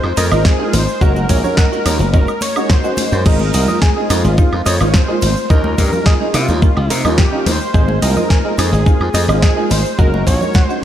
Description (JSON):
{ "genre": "nu-disco, nu disco", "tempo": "107 BPM", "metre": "4/4", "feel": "straight", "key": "Ab major", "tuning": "A4 = 439 Hz", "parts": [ { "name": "wide unison lead", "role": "melody", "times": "0.0-10.8 s", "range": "F4 to Db5", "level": "-21 LUFS", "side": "equal", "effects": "diffuse ambient delay" }, { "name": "dark baby grand piano", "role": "accompaniment", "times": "0.0-10.8 s", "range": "G3 to Gb4", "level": "-20 LUFS", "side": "right 1 dB", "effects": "ensemble chorus, diffuse ambient delay" }, { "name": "glassy slap bass", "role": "bass", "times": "0.0-10.4 s", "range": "Gb1 to C3", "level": "-16 LUFS", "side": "equal", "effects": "none" }, { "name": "house drum kit", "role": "drums", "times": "0.0-10.8 s", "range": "crash cymbal, hi-hat, ride cymbal, shaker, snare drum, woodblock", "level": "-22 LUFS", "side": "equal", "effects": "studio ambience" }, { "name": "direct-recorded clean electric guitar", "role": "riff", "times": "0.2-10.8 s", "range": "Eb3 to Ab5", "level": "-24 LUFS", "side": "right 2 dB", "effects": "lush chorus, diffuse ambient delay" }, { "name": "tube shaker and congas", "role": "percussion", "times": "0.2-10.7 s", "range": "none", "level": "-26 LUFS", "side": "left 3 dB", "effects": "none" }, { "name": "electronic kick drum", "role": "drums", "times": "0.5-10.7 s", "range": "none", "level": "-12 LUFS", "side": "equal", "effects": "studio ambience" } ], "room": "light reverb", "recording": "none", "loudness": "-12 LUFS", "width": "side -11 dB against mid", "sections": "0.0-10.8 A section", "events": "none", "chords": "0.0 Ab69; 1.0 Gb69; 3.3 Ab69; 5.5 Eb9; 7.7 Ab69; 10.0 Gb69" }